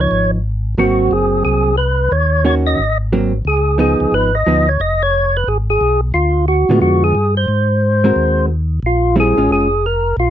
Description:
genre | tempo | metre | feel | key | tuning
jazz | 179 BPM | 4/4 | swing 63% on 8ths | Ab mixolydian | A4 = 442 Hz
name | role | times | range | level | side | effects
percussive tonewheel organ | melody | 0.0-10.3 s | F4 to Eb5 | -15 LUFS | equal | slow rotary speaker, overdrive
vintage hollow-body jazz guitar | accompaniment | 0.0-4.7, 6.7-9.7 s | D3 to Bb4 | -16 LUFS | right 2 dB | none
mellow tonewheel organ | bass | 0.0-10.3 s | F1 to A2 | -17 LUFS | equal | slow rotary speaker
room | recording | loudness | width
little or no reverb | dry, close 1970s-style studio recording | -12 LUFS | side -11 dB against mid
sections
0.0-10.3 A section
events
none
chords
0.0 Db9; 0.8 Ab9; 2.1 Ebm7; 2.8 Ab9; 3.5 Db9; 6.1 Ddim7; 7.5 Ab9; 8.8 Bbm7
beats
0.11 0.45 | 0.78 1.12 1.45 1.79 | 2.12 2.46 2.79 3.13 | 3.46 3.80 4.13 4.47 | 4.80 5.14 5.48 5.81 | 6.15 6.48 6.82 7.15 | 7.49 7.83 8.16 8.50 | 8.83 9.17 9.50 9.84 | 10.17

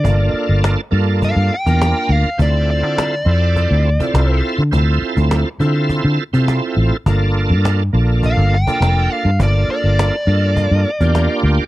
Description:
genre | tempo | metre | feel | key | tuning
straight-eighth soul blues | 103 BPM | 4/4 | straight | unclear | A4 = 440 Hz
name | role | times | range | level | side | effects
dark smooth lead guitar | melody | 0.0-4.4, 8.3-11.4 s | D5 to G5 | -20 LUFS | left 1 dB | overdrive
bright tonewheel organ | accompaniment | 0.0-11.6 s | Bb3 to Bb4 | -21 LUFS | right 4 dB | slow rotary speaker, overdrive, chorus vibrato
vintage muted fingered electric bass | bass | 0.0-11.6 s | F1 to D3 | -14 LUFS | equal | none
cajon | drums | 0.0-11.3 s | none | -22 LUFS | equal | none
room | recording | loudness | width
little or no reverb | dry, close 1970s-style studio recording | -13 LUFS | side -16 dB against mid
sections
0.0-11.7 A section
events
none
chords
0.0 Gm9; 2.4 Dm9; 7.1 Gm9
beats
| 0.05 0.63 1.22 1.80 | 2.38 2.97 3.55 4.14 | 4.72 5.31 5.89 6.48 | 7.06 7.64 8.23 8.81 | 9.39 9.98 10.56 11.14

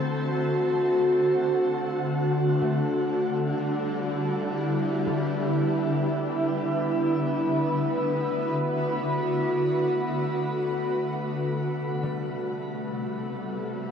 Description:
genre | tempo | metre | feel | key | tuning
ambient | free time | none | none | unclear | A4 = 438 Hz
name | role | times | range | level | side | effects
warm flugelhorn | melody | 0.0-0.9 s | C5 | -41 LUFS | equal | none
shimmering ambient pad | sustained chords | 0.0-13.9 s | C3 to B4 | -24 LUFS | equal | chorus, built-in reverb
concert harp | arpeggios | 0.0-13.9 s | G3 to A4 | -39 LUFS | left 3 dB | none
room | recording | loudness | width
wet shimmer reverb, RT60 7.9 s | worn, warbling old tape, cassette tape, warbly pitch drift | -24 LUFS | side -7 dB against mid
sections
0.0-13.9 A section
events
fade-out 8.3-13.9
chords
0.0 D7; 2.1 Em7; 11.4 Am7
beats
free time

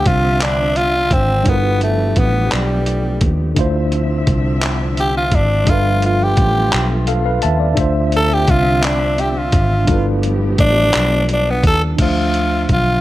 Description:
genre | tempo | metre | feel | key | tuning
slow six-eight R&B | 57 BPM (dotted quarters) | 6/8 | straight | D dorian | A4 = 442 Hz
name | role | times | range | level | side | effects
breathy tenor saxophone | melody | 0.0-13.0 s | G3 to A4 | -17 LUFS | equal | slapback echo
tine electric piano | accompaniment | 0.0-13.0 s | D3 to A5 | -21 LUFS | equal | overdrive, fast stereo tremolo
warm studio string section | sustained chords | 0.0-12.0 s | D3 to E5 | -26 LUFS | equal | none
vintage muted fingered electric bass | bass | 0.0-13.0 s | G1 to Eb2 | -18 LUFS | equal | none
dusty soul sampler-style drum kit | drums | 0.1-12.9 s | crash cymbal, handclaps, hi-hat, kick drum | -18 LUFS | equal | none
room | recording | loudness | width
little or no reverb | none | -13 LUFS | side -15 dB against mid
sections
0.0-12.0 A section; 12.0-13.0 B section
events
tenor saxophone solo 0.0-12.0; tine electric piano fill 6.7-7.8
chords
0.0 Dm9; 1.5 G13; 3.6 Dm9; 5.7 G13; 7.8 Dm9; 9.9 G13; 12.0 Dm9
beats
0.41 | 1.46 2.51 | 3.57 4.62 | 5.67 6.72 | 7.78 8.83 | 9.88 10.94 | 11.99

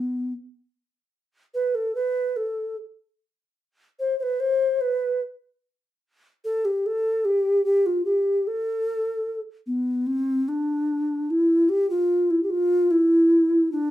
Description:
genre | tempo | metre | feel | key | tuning
klezmer | 74 BPM | 3/4 | straight | A minor | A4 = 444 Hz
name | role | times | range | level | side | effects
bright reedy bass ocarina | solo | 0.0-13.9 s | B3 to C5 | -21 LUFS | equal | none
room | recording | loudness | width
wet studio reverb, RT60 0.5 s | heard from further back in the room | -21 LUFS | side -14 dB against mid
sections
0.0-10.1 A section; 10.1-13.9 B section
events
none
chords
none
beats
| 0.32 1.13 1.94 | 2.76 3.57 4.38 | 5.20 6.01 6.82 | 7.64 8.45 9.26 | 10.07 10.88 11.70 | 12.51 13.31

